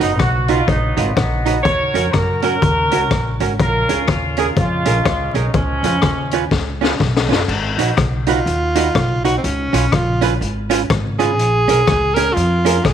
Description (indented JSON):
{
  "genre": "ska",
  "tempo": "123 BPM",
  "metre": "4/4",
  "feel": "swing 61% on 8ths",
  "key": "G# dorian",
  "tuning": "A4 = 439 Hz",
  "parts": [
    { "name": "warm horn section", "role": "melody", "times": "0.0-6.5 s", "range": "E#3 to C#5", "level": "-20 LUFS", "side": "equal", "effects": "none" },
    { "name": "archtop guitar, miked and amplified", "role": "accompaniment", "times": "0.0-12.9 s", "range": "C#4 to B4", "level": "-21 LUFS", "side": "right 9 dB", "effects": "none" },
    { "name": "upright bass", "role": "bass", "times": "0.0-12.9 s", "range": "F#1 to F#2", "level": "-20 LUFS", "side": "equal", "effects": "none" },
    { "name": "raw garage drum kit", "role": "drums", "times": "0.0-12.9 s", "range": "crash cymbal, hi-hat, kick drum, rim click, snare drum", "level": "-19 LUFS", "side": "left 3 dB", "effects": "none" },
    { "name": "edgy alto saxophone", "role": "melody", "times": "8.3-12.9 s", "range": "B#3 to A#4", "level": "-18 LUFS", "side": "right 1 dB", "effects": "none" }
  ],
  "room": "light reverb, small room ambience",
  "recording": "1960s-style stereo, vinyl crackle",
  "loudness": "-14 LUFS",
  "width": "side -9 dB against mid",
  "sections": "0.0-7.5 A section; 7.5-12.9 B section",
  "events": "drum fill 6.5-7.5; alto saxophone solo 7.5-12.9",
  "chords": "0.0 G#m7 (rootless); 1.7 D#m7; 3.6 A#m7; 5.5 C#7; 7.5 G#m7; 9.4 C#7; 11.4 A#m7"
}